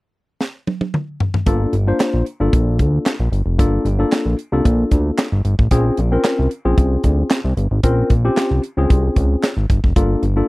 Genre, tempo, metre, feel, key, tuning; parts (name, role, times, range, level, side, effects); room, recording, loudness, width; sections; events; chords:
early-eighties boogie funk; 113 BPM; 4/4; straight; G minor; A4 = 441 Hz
tight funk drum kit; drums; 0.4-10.4 s; handclaps, hi-hat, kick drum, snare drum, toms; -17 LUFS; equal
tine electric piano; accompaniment; 1.5-10.5 s; Bb3 to C5; -19 LUFS; left 2 dB; overdrive
fat analog bass; bass; 1.5-10.4 s; F1 to D2; -17 LUFS; equal
little or no reverb; dry, close 1970s-style studio recording; -15 LUFS; side -21 dB against mid
0.0-1.5 A section; 1.5-10.5 B section
drum fill 0.4-1.5
0.0 N.C.; 1.5 Gm9; 5.7 Bbm9; 10.0 Gm9